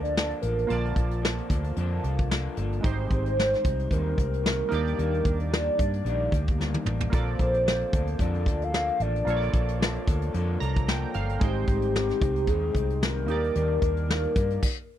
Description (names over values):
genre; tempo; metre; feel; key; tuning
indie pop, bedroom pop; 112 BPM; 4/4; swing 55% on 16ths; Bb major; A4 = 442 Hz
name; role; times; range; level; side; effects
hollow clarinet-like synth lead; melody; 0.0-15.0 s; G4 to F5; -28 LUFS; equal; analog chorus
electric guitar through a small old amp; accompaniment; 0.0-14.6 s; Ab2 to A4; -35 LUFS; left 5 dB; lush chorus, warbly pitch drift
warm analog keys; accompaniment; 0.0-14.7 s; Ab3 to Bb5; -34 LUFS; right 7 dB; chorus, cassette tape
vintage muted fingered electric bass; bass; 0.0-14.6 s; G1 to G2; -28 LUFS; equal; none
soft brush drum kit; drums; 0.0-14.8 s; crash cymbal, hi-hat, kick drum, snare drum, toms; -27 LUFS; equal; none
room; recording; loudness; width
little or no reverb; dry, close 1970s-style studio recording; -24 LUFS; side -11 dB against mid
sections
0.0-15.0 A section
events
drum fill 6.6-7.1; synth keys fill 10.3-11.4; stop 14.6-15.0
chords
0.0 Bbmaj7; 2.8 Abmaj7; 4.7 Ebmaj7; 7.1 Bbmaj7; 11.4 Abmaj7; 13.3 Ebmaj7